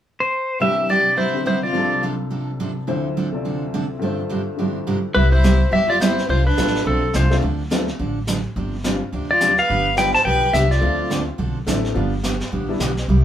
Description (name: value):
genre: country, western swing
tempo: 212 BPM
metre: 4/4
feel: swing 60% on 8ths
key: C major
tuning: A4 = 440 Hz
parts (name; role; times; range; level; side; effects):
- clean lap steel guitar; melody; 0.2-2.0, 5.1-11.2 s; A4 to A5; -18 LUFS; left 1 dB; none
- clear fiddle; second line; 0.6-2.0, 5.2-11.2 s; C4 to C5; -26 LUFS; right 2 dB; none
- clear upright piano; accompaniment; 0.6-12.8 s; C2 to D5; -26 LUFS; left 2 dB; none
- picked steel-string acoustic guitar; accompaniment; 0.6-13.2 s; G2 to A4; -24 LUFS; right 3 dB; none
- upright bass; bass; 5.2-13.2 s; G1 to D2; -21 LUFS; equal; none
- jazz brush drum kit; drums; 5.2-13.2 s; brushed snare drum, hi-hat, snare drum; -28 LUFS; equal; none
room: wet studio ambience, RT60 0.5 s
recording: band playing live in one room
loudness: -17 LUFS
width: side -10 dB against mid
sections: 0.6-5.2 A section; 5.2-13.2 B section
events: none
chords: 0.0 N.C.; 0.6 Cmaj7; 1.7 F69/C; 2.9 Dm7; 4.0 G7sus4; 5.2 Cmaj7; 6.3 F69; 7.4 Dm7; 8.6 G7sus4; 9.7 G7; 10.8 Dm7; 12.0 G7